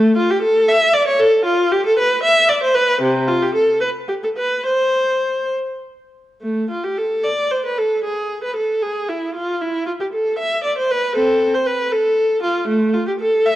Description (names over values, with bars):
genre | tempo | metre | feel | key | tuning
classical, baroque-style suite movement for unaccompanied viola | 63-80 BPM (dotted quarters) | 6/8 | rubato | C major, A minor from 6.4 s | A4 = 441 Hz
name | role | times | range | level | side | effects
rich viola | solo | 0.0-13.6 s | C3 to E5 | -15 LUFS | equal | none
room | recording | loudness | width
moderate recital hall reverb, RT60 1.6 s | worn, warbling old tape, cassette tape, warbly pitch drift | -15 LUFS | side -14 dB against mid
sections
0.0-6.4 A section; 6.4-13.6 A section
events
none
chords
none